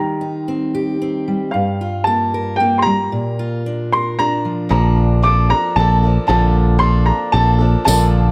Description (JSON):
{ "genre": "indie folk with a building arrangement", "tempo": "113 BPM", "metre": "3/4", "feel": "straight", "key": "Bb major", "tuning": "A4 = 441 Hz", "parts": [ { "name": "warm upright piano", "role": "melody", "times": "0.0-8.3 s", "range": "F5 to D6", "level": "-20 LUFS", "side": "equal", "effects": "none" }, { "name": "fingerpicked steel-string acoustic guitar", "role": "accompaniment", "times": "0.0-6.3 s", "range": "G2 to Bb4", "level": "-23 LUFS", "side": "equal", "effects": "none" }, { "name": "picked swing-style acoustic guitar", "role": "accompaniment", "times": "4.7-8.3 s", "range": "Bb2 to A4", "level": "-24 LUFS", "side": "equal", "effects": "none" }, { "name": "picked electric bass", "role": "bass", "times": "4.7-8.3 s", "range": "Bb1", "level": "-16 LUFS", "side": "equal", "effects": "none" }, { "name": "warm upright piano", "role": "accompaniment", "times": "7.9-8.3 s", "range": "Bb1 to D5", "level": "-27 LUFS", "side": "equal", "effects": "none" }, { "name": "tambourine", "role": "percussion", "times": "7.9-8.0 s", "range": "none", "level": "-25 LUFS", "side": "equal", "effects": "none" } ], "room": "light reverb, studio ambience", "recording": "none", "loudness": "-16 LUFS", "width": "mono", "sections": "0.0-4.7 A section; 4.7-8.3 B section", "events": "build-up 4.7-8.3", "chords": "0.0 Eb6; 1.5 Gm7; 3.1 Bb; 4.7 Bbmaj7" }